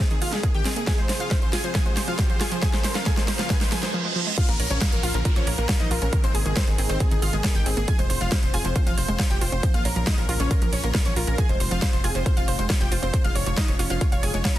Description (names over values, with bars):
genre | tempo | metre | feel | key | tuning
uplifting trance | 137 BPM | 4/4 | straight | unclear | A4 = 442 Hz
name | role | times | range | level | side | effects
supersaw chords | melody | 0.0-14.6 s | C4 to Ab5 | -31 LUFS | equal | wide subtle chorus, sidechain pumping, dub echo
analog pluck | second line | 0.0-14.6 s | Ab4 to Ab5 | -35 LUFS | left 1 dB | chorus, sidechain pumping
lush unison pad | sustained chords | 0.0-14.6 s | Ab2 to Bb4 | -35 LUFS | equal | chorus, sidechain pumping
wide unison pluck | arpeggios | 0.0-14.6 s | Eb3 to F5 | -32 LUFS | right 2 dB | sidechain pumping, dub echo
big-room dance drum kit | drums | 0.0-14.6 s | crash cymbal, hi-hat, snare drum | -29 LUFS | right 1 dB | none
electronic kick drum | drums | 0.0-14.5 s | none | -23 LUFS | equal | none
riser, reverse cymbal and downlifter | sound effects | 1.0-7.9 s | none | -33 LUFS | right 2 dB | none
tight sequencer bass | bass | 4.5-14.6 s | F1 to Bb1 | -26 LUFS | equal | tube saturation, sidechain pumping
room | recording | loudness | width
little or no reverb | dense, heavily limited modern master, lossy compression artefacts | -20 LUFS | side -14 dB against mid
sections
0.0-4.4 A section; 4.4-14.6 B section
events
build-up 0.0-4.4; drum fill 0.0-3.9; riser 1.0-3.9; reverse cymbal 3.5-4.4; drop 4.4-14.6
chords
0.0 Abadd9; 0.9 Fm; 2.6 Bbm; 6.1 Abadd9; 7.9 Fm; 9.6 Bbm; 11.4 Fm; 13.1 Db/F